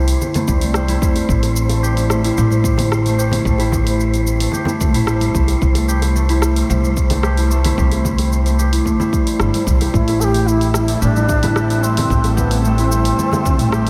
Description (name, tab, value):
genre	organic downtempo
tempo	111 BPM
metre	4/4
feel	straight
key	A minor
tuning	A4 = 441 Hz
part	concert harp	arpeggios	0.0-13.9 s	G3 to G4	-23 LUFS	equal	low-pass filter, delay
part	upright bass	bass	0.0-13.9 s	G1 to E2	-19 LUFS	equal	none
part	wind-like tuned noise texture	texture	0.0-13.9 s	C5 to E5	-30 LUFS	equal	built-in reverb
part	deep house drum kit	drums	0.1-13.9 s	hi-hat, rim click, shaker	-28 LUFS	equal	studio reverb
part	congas and bongos	percussion	0.2-13.9 s	none	-29 LUFS	equal	none
part	electronic kick drum	drums	0.5-13.6 s	none	-21 LUFS	equal	studio reverb
part	breathy bass bansuri	melody	9.9-13.9 s	B3 to A4	-23 LUFS	equal	vintage 12-bit sampler grit, analog delay
part	ethereal airy pad	sustained chords	11.0-13.9 s	G3 to C4	-27 LUFS	equal	ensemble chorus, built-in reverb, phaser, sidechain pumping
room	moderate huge ambient reverb, RT60 7.4 s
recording	dreamy mix soaked in reverb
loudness	-16 LUFS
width	mono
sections	0.0-13.9 A section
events	none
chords	0.0 C; 1.3 Am7; 5.6 C; 9.9 Am7